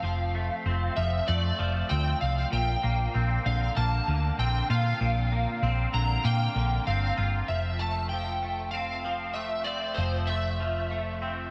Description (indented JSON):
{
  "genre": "post-rock",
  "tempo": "97 BPM",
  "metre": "4/4",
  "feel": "straight",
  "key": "F major",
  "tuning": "A4 = 440 Hz",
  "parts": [
    { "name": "overdriven slide guitar", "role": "melody", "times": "0.0-11.5 s", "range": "C5 to Bb5", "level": "-34 LUFS", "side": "equal", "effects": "ensemble chorus, analog delay" },
    { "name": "twangy electric guitar", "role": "arpeggios", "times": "0.0-11.5 s", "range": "Bb2 to F4", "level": "-35 LUFS", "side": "equal", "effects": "ensemble chorus, analog delay" },
    { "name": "hollow-body short-scale fingered electric bass", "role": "bass", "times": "0.0-11.5 s", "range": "F1 to Bb2", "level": "-30 LUFS", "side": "equal", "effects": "none" }
  ],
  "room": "moderate huge ambient reverb, RT60 6.5 s",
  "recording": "dreamy mix soaked in reverb",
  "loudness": "-28 LUFS",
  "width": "mono",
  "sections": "0.0-7.5 A section; 7.5-11.5 B section",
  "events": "none",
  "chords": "0.0 F; 2.5 Bbadd9; 7.5 Fmaj7"
}